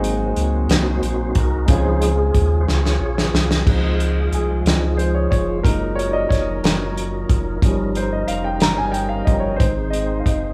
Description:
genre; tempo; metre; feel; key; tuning
slow gospel; 61 BPM (dotted quarters); 6/8; straight; Db major; A4 = 440 Hz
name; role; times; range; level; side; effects
warm concert grand piano; accompaniment; 0.0-10.5 s; Ab2 to Bb5; -26 LUFS; equal; none
tonewheel organ; sustained chords; 0.0-10.5 s; F3 to Db5; -27 LUFS; equal; slow rotary speaker, chorus vibrato
sub bass with octave; bass; 0.0-10.5 s; F1 to Eb2; -24 LUFS; equal; none
warm soul drum kit; drums; 0.0-10.4 s; crash cymbal, hi-hat, kick drum, snare drum; -22 LUFS; equal; none
dark French horn section; sustained chords; 3.7-10.5 s; Eb3 to F4; -34 LUFS; equal; none
room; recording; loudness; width
moderate large studio reverb, RT60 1.3 s; band playing live in one room; -19 LUFS; mono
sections
0.0-3.7 A section; 3.7-10.5 B section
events
tonewheel organ solo 0.0-3.7; drum fill 2.7-3.7; grand piano solo 3.7-10.5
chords
0.0 Ab7; 1.7 Dbmaj7; 5.6 Gb6; 7.6 Eb7; 9.6 Ab

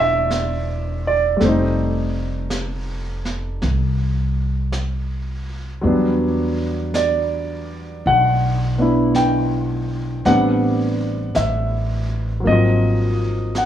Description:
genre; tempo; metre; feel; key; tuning
jazz ballad; 54 BPM; 4/4; swing 67% on 8ths; unclear; A4 = 440 Hz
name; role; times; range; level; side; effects
warm baby grand piano; accompaniment; 0.0-13.7 s; F3 to G5; -19 LUFS; equal; none
upright bass; bass; 0.0-13.7 s; E1 to E2; -22 LUFS; equal; none
jazz brush drum kit; drums; 0.3-13.7 s; brushed snare drum, hi-hat, snare drum; -32 LUFS; right 2 dB; none
room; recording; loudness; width
light reverb; worn, warbling old tape, cassette tape, warbly pitch drift, studio ambience; -17 LUFS; side -10 dB against mid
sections
0.0-13.7 A section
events
none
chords
0.0 Am9 (rootless); 1.4 F9; 5.8 Em7; 10.2 Am11; 12.5 Ab13

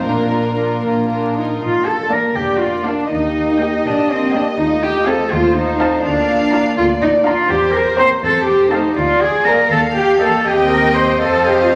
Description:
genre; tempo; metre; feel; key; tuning
quick classical-period movement for symphony orchestra; 81 BPM (dotted quarters); 6/8; rubato; Bb major; A4 = 440 Hz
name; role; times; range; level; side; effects
warm chamber violin section; melody; 0.0-11.8 s; Bb4 to F5; -24 LUFS; equal; none
warm chamber violin section; second line; 0.0-11.8 s; F4 to Bb5; -26 LUFS; equal; none
dark chamber viola section; accompaniment; 0.0-11.8 s; Bb3 to C5; -24 LUFS; equal; none
mellow French horn section; sustained chords; 0.0-11.1 s; G3 to G4; -28 LUFS; equal; none
dark chamber cello section; bass; 0.0-11.7 s; Bb2 to C5; -18 LUFS; equal; none
warm chamber double bass section; bass; 0.0-11.8 s; F1 to F2; -28 LUFS; equal; none
room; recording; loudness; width
wet recital hall reverb, RT60 1.4 s; vinyl crackle; -15 LUFS; mono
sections
0.0-1.6 A section; 1.6-11.8 B section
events
none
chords
0.0 Bb; 3.1 Eb; 4.6 F7/Eb; 6.1 Bb/D; 7.5 C7/E; 8.2 F; 9.0 Bb7/D; 9.7 Eb; 10.5 Cm/Eb; 11.2 F7

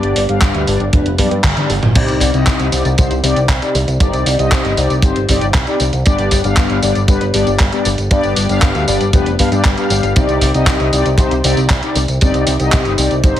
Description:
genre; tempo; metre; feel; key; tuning
italo disco; 117 BPM; 4/4; straight; C harmonic minor; A4 = 440 Hz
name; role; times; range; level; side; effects
mellow synth brass; stabs; 0.0-13.4 s; G2 to F5; -16 LUFS; left 2 dB; chorus, ping-pong delay
picked electric bass with an envelope filter; bass; 0.0-13.4 s; F1 to G2; -17 LUFS; right 1 dB; tube saturation
gated 80s digital drum machine; drums; 0.0-13.4 s; crash cymbal, handclaps, hi-hat, tambourine, toms; -19 LUFS; equal; gated reverb
kick drum; drums; 0.4-13.3 s; none; -14 LUFS; equal; none
room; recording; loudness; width
light reverb; heavily compressed radio sound; -12 LUFS; side -11 dB against mid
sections
0.0-2.0 A section; 2.0-13.4 B section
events
drum fill 1.2-2.0; band accent 1.4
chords
0.0 G; 2.0 Cmadd9; 6.1 G; 10.2 Cmadd9

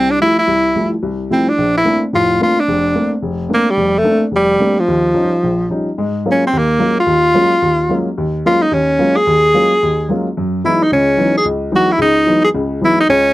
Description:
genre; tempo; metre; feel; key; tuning
jazz; 219 BPM; 4/4; swing 60% on 8ths; unclear; A4 = 440 Hz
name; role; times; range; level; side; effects
clear tenor saxophone; melody; 0.0-13.3 s; F3 to Ab4; -12 LUFS; equal; none
warm baby grand piano; accompaniment; 0.0-13.3 s; F1 to F4; -17 LUFS; left 1 dB; none
room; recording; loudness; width
moderate booth ambience, RT60 0.3 s; dark, warm production; -12 LUFS; side -17 dB against mid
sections
0.0-6.0 A section; 6.0-13.3 B section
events
none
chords
0.0 Fmaj9; 1.6 Bbmaj9; 4.9 Eb9; 6.0 Ab13sus4; 10.4 Gb13sus4

